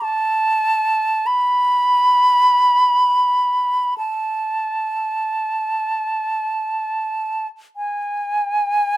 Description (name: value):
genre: classical, free, expressive piece for unaccompanied flute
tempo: free time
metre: none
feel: none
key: unclear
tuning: A4 = 438 Hz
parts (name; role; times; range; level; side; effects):
- silver concert flute; solo; 0.0-9.0 s; G#5 to B5; -16 LUFS; right 1 dB; none
room: light reverb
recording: minimal, uncompressed stereo recording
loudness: -16 LUFS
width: side -15 dB against mid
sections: 0.0-9.0 A section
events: none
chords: none